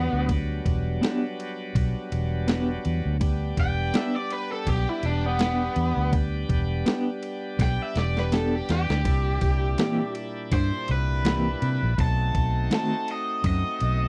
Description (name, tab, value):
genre	straight-eighth soul blues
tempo	82 BPM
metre	4/4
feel	swing 55% on 16ths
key	E minor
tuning	A4 = 440 Hz
part	raw garage guitar	melody	0.0-14.1 s	B3 to A5	-31 LUFS	equal	overdrive
part	bright tonewheel organ	accompaniment	0.0-14.1 s	Bb2 to G4	-36 LUFS	equal	overdrive, slow rotary speaker
part	vintage muted fingered electric bass	bass	0.0-14.1 s	E1 to C3	-28 LUFS	equal	none
part	dusty soul sampler-style drum kit	drums	0.3-14.0 s	kick drum, ride cymbal, snare drum	-29 LUFS	equal	none
part	clean electric guitar	stabs	1.0-13.0 s	D#3 to G4	-28 LUFS	equal	tremolo
room	little or no reverb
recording	dry, close 1970s-style studio recording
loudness	-25 LUFS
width	mono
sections	0.0-14.1 A section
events	overdriven electric guitar solo 0.0-14.1; drum fill 7.6-9.1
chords	0.0 Em7; 9.1 C7; 12.0 B7b9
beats	| 0.29 1.02 1.75 2.48 | 3.21 3.94 4.68 5.41 | 6.14 6.87 7.60 8.33 | 9.06 9.79 10.53 11.26 | 11.99 12.72 13.45